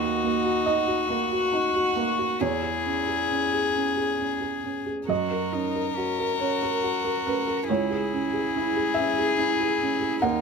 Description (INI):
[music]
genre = neoclassical piano and strings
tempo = 46 BPM (dotted quarters)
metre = 6/8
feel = rubato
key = C# dorian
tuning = A4 = 439 Hz
[part]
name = warm violin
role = melody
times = 0.0-10.4 s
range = F#4 to A#4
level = -26 LUFS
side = left 6 dB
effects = none
[part]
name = clear cello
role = second line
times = 0.0-10.4 s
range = C#4 to F#4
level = -32 LUFS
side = right 4 dB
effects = none
[part]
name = felt-muted upright piano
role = accompaniment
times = 0.0-10.4 s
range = C#2 to F#5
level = -26 LUFS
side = right 3 dB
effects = none
[sound]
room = light reverb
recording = none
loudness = -23 LUFS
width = side -5 dB against mid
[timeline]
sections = 0.0-10.4 A section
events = none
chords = 0.0 D#m; 2.4 C#m/E; 5.1 F#; 7.7 C#m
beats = 1.09 | 2.41 3.75 | 5.09 6.40 | 7.69 8.96 | 10.23